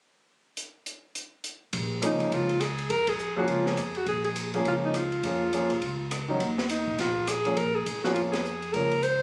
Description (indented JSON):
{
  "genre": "jazz, small-group swing and bop",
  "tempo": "206 BPM",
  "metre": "4/4",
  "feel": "swing 60% on 8ths",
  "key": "Bb minor",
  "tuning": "A4 = 440 Hz",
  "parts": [
    { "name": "open jazz drum kit", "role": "drums", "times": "0.6-9.1 s", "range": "hi-hat, kick drum, ride cymbal, rim click, snare drum", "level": "-37 LUFS", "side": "equal", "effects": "none" },
    { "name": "upright bass", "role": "bass", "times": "1.7-9.2 s", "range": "Ab1 to Bb2", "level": "-37 LUFS", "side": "equal", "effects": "none" },
    { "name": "warm concert grand piano", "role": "accompaniment", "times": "2.0-8.9 s", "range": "Eb3 to Ab4", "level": "-31 LUFS", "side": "equal", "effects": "none" },
    { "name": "warm alto saxophone", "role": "melody", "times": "2.1-9.2 s", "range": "Eb4 to C5", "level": "-30 LUFS", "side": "equal", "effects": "none" }
  ],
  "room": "light reverb",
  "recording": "recorded on a phone in the room, club reverb, compression",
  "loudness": "-28 LUFS",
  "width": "mono",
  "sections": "0.6-1.7 A section; 1.7-9.2 B section",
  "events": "band accent 3.0, 8.3",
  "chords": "0.6 N.C.; 1.7 Bbm7; 6.4 Ebsus2; 7.6 Bbm7"
}